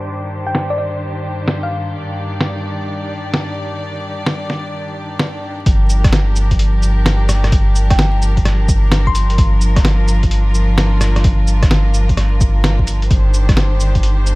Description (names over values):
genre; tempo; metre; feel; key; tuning
future garage; 129 BPM; 4/4; swing 65% on 16ths; G minor; A4 = 440 Hz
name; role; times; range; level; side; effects
clear studio string section; sustained chords; 0.0-14.4 s; G2 to D5; -23 LUFS; equal; sidechain pumping
backwards swelling texture; texture; 0.0-5.7 s; D5; -38 LUFS; right 2 dB; none
thumb-piano-like synth pluck; melody; 0.5-2.1, 7.9-9.7 s; D5 to C6; -25 LUFS; left 1 dB; chorus, cassette tape, dub echo
lo-fi sampler-style drum kit; drums; 0.5-14.4 s; cabasa, hi-hat, rim click, snare drum; -20 LUFS; equal; small room reverb
warm sub bass; bass; 5.7-14.4 s; G1; -14 LUFS; equal; tube saturation, sidechain pumping
electronic kick drum; drums; 5.7-14.0 s; none; -16 LUFS; equal; overdrive, small room reverb
room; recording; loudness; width
little or no reverb; vinyl crackle, low-pass filter; -13 LUFS; side -22 dB against mid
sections
0.0-5.7 A section; 5.7-14.4 B section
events
filter sweep 0.0-5.7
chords
0.0 Cmadd9/G; 5.7 Gm7; 13.1 Cmadd9/G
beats
| 0.08 0.55 1.01 1.48 | 1.94 2.41 2.87 3.34 | 3.80 4.27 4.73 5.20 | 5.66 6.13 6.59 7.06 | 7.52 7.99 8.45 8.92 | 9.38 9.85 10.31 10.78 | 11.24 11.71 12.18 12.64 | 13.11 13.57 14.04